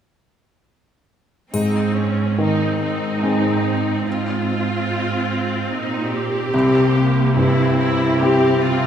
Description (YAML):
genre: cinematic, emotional film score for orchestra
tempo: 72 BPM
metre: 3/4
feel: rubato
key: Ab major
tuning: A4 = 442 Hz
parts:
  - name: bright symphonic viola section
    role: accompaniment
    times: 1.5-8.9 s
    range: Bb3 to G4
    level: -21 LUFS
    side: right 1 dB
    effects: none
  - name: clear baby grand piano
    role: accompaniment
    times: 1.5-8.9 s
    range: C2 to Ab4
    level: -20 LUFS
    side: left 1 dB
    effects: none
  - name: clear symphonic cello section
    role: bass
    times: 1.5-8.9 s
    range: Ab2 to C3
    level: -22 LUFS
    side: right 2 dB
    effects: none
  - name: triangle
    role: percussion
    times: 1.5-3.2 s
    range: none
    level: -38 LUFS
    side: left 4 dB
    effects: none
room: wet scoring stage reverb, RT60 1.8 s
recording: heard from further back in the room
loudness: -16 LUFS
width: side -8 dB against mid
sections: 1.5-8.9 A section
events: none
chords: 1.5 Ab; 6.5 C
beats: | 1.53 2.38 3.23 | 4.06 4.89 5.71 | 6.53 7.37 8.21